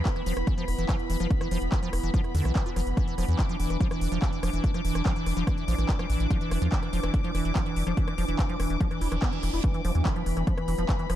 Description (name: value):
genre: psychedelic trance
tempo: 144 BPM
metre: 4/4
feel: straight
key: unclear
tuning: A4 = 440 Hz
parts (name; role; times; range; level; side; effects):
- bubbling stepped-filter texture; sustained chords; 0.0-11.2 s; E3 to D4; -34 LUFS; right 1 dB; chorus, built-in reverb, sidechain pumping
- liquid acid bass; riff; 0.0-11.2 s; D3 to F4; -32 LUFS; moving between left 4 dB and right 4 dB; chorus, auto-pan, sidechain pumping, digital delay
- rich chamber string section; texture; 0.0-11.2 s; B5 to D6; -39 LUFS; left 3 dB; sidechain pumping
- electronic kick drum; drums; 0.1-11.0 s; none; -27 LUFS; equal; overdrive, studio reverb
- techno drum kit; drums; 0.1-11.2 s; handclaps, hi-hat, rim click; -38 LUFS; left 1 dB; overdrive, studio reverb
- round analog bass; bass; 0.3-11.2 s; E1 to E2; -28 LUFS; equal; none
- reverse cymbal; sound effects; 9.0-9.6 s; none; -41 LUFS; right 5 dB; none
room: little or no reverb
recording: dark, warm production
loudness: -24 LUFS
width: side -12 dB against mid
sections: 0.0-11.2 A section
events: reverse cymbal 9.0-9.6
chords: 0.0 E5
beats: 0.06 0.47 0.89 | 1.30 1.72 2.14 2.56 | 2.97 3.39 3.81 4.22 | 4.64 5.05 5.47 5.89 | 6.30 6.72 7.14 7.55 | 7.97 8.39 8.80 9.22 | 9.64 10.05 10.47 10.89